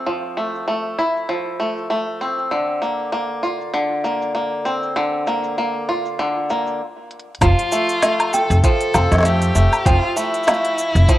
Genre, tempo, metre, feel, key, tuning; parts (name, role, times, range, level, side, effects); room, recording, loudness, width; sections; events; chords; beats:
folktronica; 98 BPM; 4/4; swing 56% on 16ths; F major; A4 = 441 Hz
bluegrass banjo; arpeggios; 0.0-11.2 s; D3 to F4; -20 LUFS; equal; vintage 12-bit sampler grit, low-pass filter, cassette tape, analog delay
organic electronic drum kit; drums; 0.1-11.2 s; cabasa, hi-hat, snare drum, woodblock; -21 LUFS; equal; low-pass filter on hats, low-pass filter on perc, low-pass filter on snare, low-pass filter on room
rich violin; melody; 7.4-11.2 s; E4 to A4; -21 LUFS; equal; cassette tape
kalimba; second line; 7.4-10.8 s; F5 to G5; -24 LUFS; equal; cassette tape, tape echo
upright bass; bass; 7.4-11.0 s; F1 to F2; -15 LUFS; equal
electronic kick drum; drums; 7.4-11.2 s; -16 LUFS; equal
moderate spring reverb, RT60 2.2 s; home recording on cassette; -17 LUFS; side -14 dB against mid
0.0-7.4 A section; 7.4-11.2 B section
stop 6.8-7.4; drum fill 7.1-7.4
0.0 Fmaj7; 2.5 Bbadd9; 7.4 Fmaj7
| 0.07 0.68 1.29 1.90 | 2.52 3.13 3.74 4.35 | 4.96 5.58 6.19 6.80 | 7.41 8.03 8.64 9.25 | 9.86 10.47 11.09